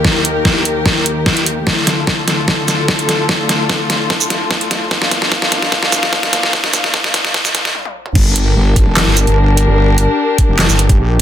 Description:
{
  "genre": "heavy wobble dubstep",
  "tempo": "148 BPM",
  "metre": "4/4",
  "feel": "half-time",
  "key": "G minor",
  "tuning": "A4 = 440 Hz",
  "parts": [
    { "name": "warm chamber string section", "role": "sustained chords", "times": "0.0-11.2 s", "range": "D2 to F5", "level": "-18 LUFS", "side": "left 2 dB", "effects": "sidechain pumping, low-pass filter" },
    { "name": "dubstep drum kit", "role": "drums", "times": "0.0-11.2 s", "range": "crash cymbal, handclaps, hi-hat, shaker, snare drum, toms", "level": "-14 LUFS", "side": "equal", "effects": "none" },
    { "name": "electronic kick drum", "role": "drums", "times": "0.0-11.2 s", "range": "none", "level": "-15 LUFS", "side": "equal", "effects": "none" },
    { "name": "wobble bass", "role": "bass", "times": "8.2-11.2 s", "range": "F1 to Bb1", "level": "-12 LUFS", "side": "equal", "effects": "chorus, overdrive" }
  ],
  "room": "light reverb",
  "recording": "dense, heavily limited modern master, high-pass filter, faint mains hum",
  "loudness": "-11 LUFS",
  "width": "side -10 dB against mid",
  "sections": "0.0-8.2 A section; 8.2-11.2 B section",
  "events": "build-up 0.0-8.2; drum fill 0.0-7.7, 7.7-8.2; filter sweep on string section 0.0-8.2; filter sweep 0.0-8.2; stop 7.7-8.2; drop 8.2-11.2",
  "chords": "0.0 Eb; 1.7 Dm; 4.9 Bb; 8.2 Gm"
}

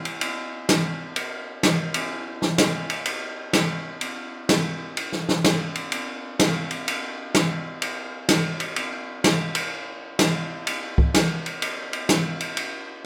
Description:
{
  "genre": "jazz",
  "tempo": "126 BPM",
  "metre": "4/4",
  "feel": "swing 66% on 8ths",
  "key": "none",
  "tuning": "none",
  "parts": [
    { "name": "open jazz drum kit", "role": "drums", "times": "0.1-12.7 s", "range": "hi-hat, kick drum, ride cymbal, snare drum", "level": "-25 LUFS", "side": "equal", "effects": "none" }
  ],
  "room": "moderate club reverb, RT60 0.6 s",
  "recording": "none",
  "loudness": "-24 LUFS",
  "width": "mono",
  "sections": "0.0-13.1 A section",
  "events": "none",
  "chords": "none"
}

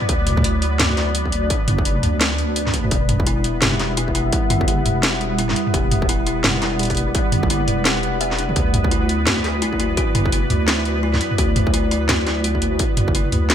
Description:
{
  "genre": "half-time drum and bass",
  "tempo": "170 BPM",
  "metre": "4/4",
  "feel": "swing 60% on 16ths, half-time",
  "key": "unclear",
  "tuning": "A4 = 441 Hz",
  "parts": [
    { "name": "deep dark ambient pad", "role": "sustained chords", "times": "0.0-13.5 s", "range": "F#3 to F#5", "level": "-25 LUFS", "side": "equal", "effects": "chorus, built-in reverb, sidechain pumping" },
    { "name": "drum and bass drum kit", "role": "drums", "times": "0.0-13.5 s", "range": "hi-hat, snare drum, toms", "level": "-20 LUFS", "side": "equal", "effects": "none" },
    { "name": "pulsing gated texture", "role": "texture", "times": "0.0-13.5 s", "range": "B3 to B4", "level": "-28 LUFS", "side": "right 2 dB", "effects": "chorus, built-in reverb" },
    { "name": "deep soft wobble bass", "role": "bass", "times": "0.1-13.5 s", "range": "E1 to D2", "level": "-22 LUFS", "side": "equal", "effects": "chorus" },
    { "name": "electronic kick drum", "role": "drums", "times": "0.1-13.1 s", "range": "none", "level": "-21 LUFS", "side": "equal", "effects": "distortion" },
    { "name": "kalimba", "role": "arpeggios", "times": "3.3-13.5 s", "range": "D4 to E5", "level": "-26 LUFS", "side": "left 4 dB", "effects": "ping-pong delay" }
  ],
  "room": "light reverb",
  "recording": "bright 1980s-style digital production",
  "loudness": "-16 LUFS",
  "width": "side -9 dB against mid",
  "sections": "0.0-13.5 A section",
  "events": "none",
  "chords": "0.0 D; 2.9 Emadd9; 8.6 Dadd9"
}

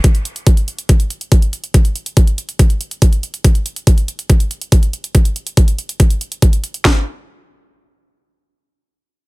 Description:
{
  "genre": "psychedelic trance",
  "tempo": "141 BPM",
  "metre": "4/4",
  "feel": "straight",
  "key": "none",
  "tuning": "none",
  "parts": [
    { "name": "drum and bass drum kit", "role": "drums", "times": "0.0-6.9 s", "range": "kick drum, snare drum", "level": "-10 LUFS", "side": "equal", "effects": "overdrive" },
    { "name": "electronic hi-hat", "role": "drums", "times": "0.0-6.8 s", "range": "none", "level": "-24 LUFS", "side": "right 2 dB", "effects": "overdrive" }
  ],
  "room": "little or no reverb",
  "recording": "none",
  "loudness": "-12 LUFS",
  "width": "side -22 dB against mid",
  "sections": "0.0-6.8 A section; 6.8-9.3 B section",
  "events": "none",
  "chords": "none"
}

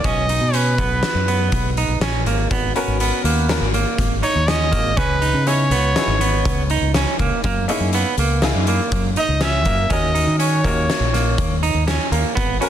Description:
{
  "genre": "progressive instrumental, band music in an uneven meter",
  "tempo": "122 BPM",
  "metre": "5/4",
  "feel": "straight",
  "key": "G# minor",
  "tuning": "A4 = 440 Hz",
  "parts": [
    { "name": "breathy trumpet", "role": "melody", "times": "0.0-11.6 s", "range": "B4 to E5", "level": "-22 LUFS", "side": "equal", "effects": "plate reverb, tape echo" },
    { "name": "fingered electric bass", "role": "bass", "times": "0.0-12.6 s", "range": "G#1 to D#3", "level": "-20 LUFS", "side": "equal", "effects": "none" },
    { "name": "oversized low-tuned drum kit", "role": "drums", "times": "0.0-12.7 s", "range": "hi-hat, kick drum, snare drum", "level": "-22 LUFS", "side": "left 1 dB", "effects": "none" },
    { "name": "semi-hollow electric guitar", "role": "arpeggios", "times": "0.1-12.7 s", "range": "A#3 to D#4", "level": "-23 LUFS", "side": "right 6 dB", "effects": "plate reverb, tape echo" },
    { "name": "clear baby grand piano", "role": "accompaniment", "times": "2.8-12.7 s", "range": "A#3 to A#4", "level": "-25 LUFS", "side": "left 3 dB", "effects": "plate reverb" }
  ],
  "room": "light reverb",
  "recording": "dense, heavily limited modern master",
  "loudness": "-16 LUFS",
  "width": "side -10 dB against mid",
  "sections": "0.0-12.7 A section",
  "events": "trumpet solo 0.0-12.7",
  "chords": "0.0 G#m11; 5.0 C#m7; 7.4 F#13; 9.9 D#m7"
}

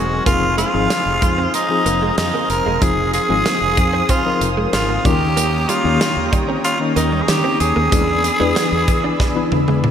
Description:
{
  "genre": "1980s-style pop",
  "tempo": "94 BPM",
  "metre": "4/4",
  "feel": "straight",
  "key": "unclear",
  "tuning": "A4 = 442 Hz",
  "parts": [
    { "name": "raspy tenor saxophone", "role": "melody", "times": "0.0-9.8 s", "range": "Eb4 to Bb4", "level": "-19 LUFS", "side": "right 1 dB", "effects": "tape echo, shimmer reverb" },
    { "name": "FM electric piano with tremolo", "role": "accompaniment", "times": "0.0-9.9 s", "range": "Eb3 to B4", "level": "-21 LUFS", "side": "left 4 dB", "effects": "slapback echo, shimmer reverb" },
    { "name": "brassy analog pad", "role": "sustained chords", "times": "0.0-9.9 s", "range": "C5 to F6", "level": "-27 LUFS", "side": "right 1 dB", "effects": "chorus, shimmer reverb" },
    { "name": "direct-recorded clean electric guitar", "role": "riff", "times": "0.0-9.9 s", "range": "F3 to D4", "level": "-26 LUFS", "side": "right 4 dB", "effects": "ensemble chorus, tape echo, shimmer reverb" },
    { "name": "fretless electric bass", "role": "bass", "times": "0.0-9.9 s", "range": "Fb1 to E3", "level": "-22 LUFS", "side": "right 1 dB", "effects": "lush chorus" },
    { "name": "modern studio drum kit", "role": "drums", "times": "0.3-9.9 s", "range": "hi-hat, kick drum, snare drum, toms", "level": "-20 LUFS", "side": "equal", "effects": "none" }
  ],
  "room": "wet lush hall reverb, RT60 2.7 s",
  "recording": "big arena sound",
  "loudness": "-14 LUFS",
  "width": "side -8 dB against mid",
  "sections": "0.0-9.9 A section",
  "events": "drum fill 9.2-9.9",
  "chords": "0.3 Fm7; 5.1 Eb7; 7.9 E7"
}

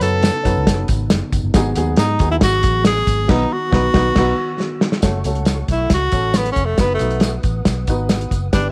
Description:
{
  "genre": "uptempo 1960s-style soul",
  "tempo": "137 BPM",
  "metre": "4/4",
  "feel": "straight",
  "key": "unclear",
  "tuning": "A4 = 440 Hz",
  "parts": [
    { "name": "breathy tenor saxophone", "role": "melody", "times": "0.0-8.7 s", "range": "A3 to A4", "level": "-22 LUFS", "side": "equal", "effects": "none" },
    { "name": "warm baby grand piano", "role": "accompaniment", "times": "0.0-8.7 s", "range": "G2 to B4", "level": "-26 LUFS", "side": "equal", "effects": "none" },
    { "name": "mellow tonewheel organ", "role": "sustained chords", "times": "0.0-8.7 s", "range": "C#3 to D#6", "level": "-33 LUFS", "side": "equal", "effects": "none" },
    { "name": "vintage muted fingered electric bass", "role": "bass", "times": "0.0-8.7 s", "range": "E#1 to G#2", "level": "-23 LUFS", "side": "equal", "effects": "none" },
    { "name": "warm soul drum kit", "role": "drums", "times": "0.0-8.6 s", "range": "crash cymbal, hi-hat, kick drum, snare drum", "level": "-20 LUFS", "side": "equal", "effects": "none" },
    { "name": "tambourine", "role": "percussion", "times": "0.0-8.6 s", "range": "none", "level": "-37 LUFS", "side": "equal", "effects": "none" }
  ],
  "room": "light reverb",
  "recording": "none",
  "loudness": "-17 LUFS",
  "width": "mono",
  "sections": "0.0-5.0 A section; 5.0-8.7 B section",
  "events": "band accent 3.3-5.0; drum fill 4.6-5.0; tenor saxophone solo 5.0-8.7",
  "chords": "0.0 Badd9/F#; 1.5 G#m7; 3.3 B; 5.0 F#m; 6.8 B/F#"
}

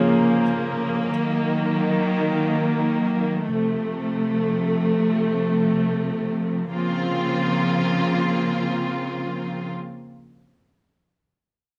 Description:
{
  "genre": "piano-driven pop",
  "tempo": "free time",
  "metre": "none",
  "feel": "none",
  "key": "Bb minor",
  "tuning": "A4 = 440 Hz",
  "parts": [
    { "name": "clear upright piano", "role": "accompaniment", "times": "0.0-1.1 s", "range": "Db4 to C5", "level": "-28 LUFS", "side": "equal", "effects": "plate reverb" },
    { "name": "rich studio string section", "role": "sustained chords", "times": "0.0-9.7 s", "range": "C3 to F4", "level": "-23 LUFS", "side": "equal", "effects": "plate reverb" }
  ],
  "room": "moderate studio reverb, RT60 0.7 s",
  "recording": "dark, warm production",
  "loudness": "-23 LUFS",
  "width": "mono",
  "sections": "0.0-6.7 A section; 6.7-9.8 B section",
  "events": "slowing down 1.1-6.7",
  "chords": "0.0 Bbm; 1.1 Ebm; 3.4 F; 6.7 Bbmadd9"
}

